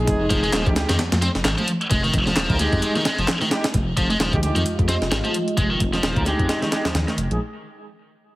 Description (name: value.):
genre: breakbeat, breaks.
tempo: 131 BPM.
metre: 4/4.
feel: swing 58% on 16ths.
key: unclear.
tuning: A4 = 444 Hz.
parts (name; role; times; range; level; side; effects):
mellow brass ensemble; stabs; 0.0-7.4 s; Ab3 to Bb4; -27 LUFS; right 1 dB; low-pass filter, digital delay.
dark detuned saw bass; bass; 0.0-7.4 s; Eb1 to F2; -24 LUFS; equal; none.
breakbeat sampler-style drum kit; drums; 0.1-7.3 s; hi-hat, kick drum, snare drum; -23 LUFS; equal; none.
garage drum kit; drums; 0.1-7.4 s; handclaps, hi-hat; -32 LUFS; equal; none.
congas; percussion; 0.1-7.2 s; none; -31 LUFS; right 2 dB; none.
high-gain distorted guitar; riff; 0.3-7.1 s; Eb3 to C4; -24 LUFS; equal; distortion, low-pass filter, digital delay.
dark analog pad; sustained chords; 4.3-7.4 s; Ab3 to Eb5; -29 LUFS; equal; chorus, vintage 12-bit sampler grit, sidechain pumping.
room: light reverb, digital ambience.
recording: heavily compressed radio sound, multiband compression.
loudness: -18 LUFS.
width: side -18 dB against mid.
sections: 0.0-3.7 A section; 3.7-7.4 B section.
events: kick drops out 2.8-3.7; filter sweep on distorted electric guitar 3.7-7.4; filter sweep on brass ensemble 3.7-7.4.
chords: 0.0 Fm9.